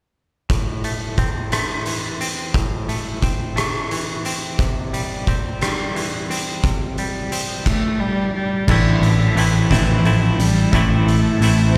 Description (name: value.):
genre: quiet-loud alternative rock.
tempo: 59 BPM (dotted quarters).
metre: 6/8.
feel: straight.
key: A minor.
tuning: A4 = 439 Hz.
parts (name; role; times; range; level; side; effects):
semi-hollow electric guitar; arpeggios; 0.5-11.8 s; A2 to E4; -25 LUFS; equal; tremolo.
oversized low-tuned drum kit; drums; 0.5-11.8 s; crash cymbal, hi-hat, kick drum, rim click, snare drum; -24 LUFS; equal; none.
warm cello; melody; 7.7-11.8 s; D3 to C4; -23 LUFS; equal; none.
picked electric bass; bass; 8.7-11.8 s; A1; -19 LUFS; equal; none.
room: studio ambience.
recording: live gig heard through the venue's PA, recital hall reverb.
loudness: -20 LUFS.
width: mono.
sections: 0.5-8.7 A section; 8.7-11.8 B section.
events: none.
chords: 0.5 Am; 4.6 C; 8.7 Am.